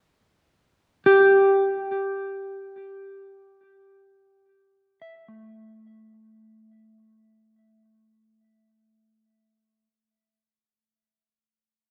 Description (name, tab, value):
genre	ambient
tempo	free time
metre	none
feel	none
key	unclear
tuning	A4 = 439 Hz
part	mellow electric guitar	solo	1.1-9.9 s	A3 to E5	-21 LUFS	equal	tape echo
room	wet lush hall reverb, RT60 2.8 s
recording	dark, warm production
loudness	-20 LUFS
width	mono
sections	0.0-6.0 A section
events	fade-out 0.0-6.0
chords	none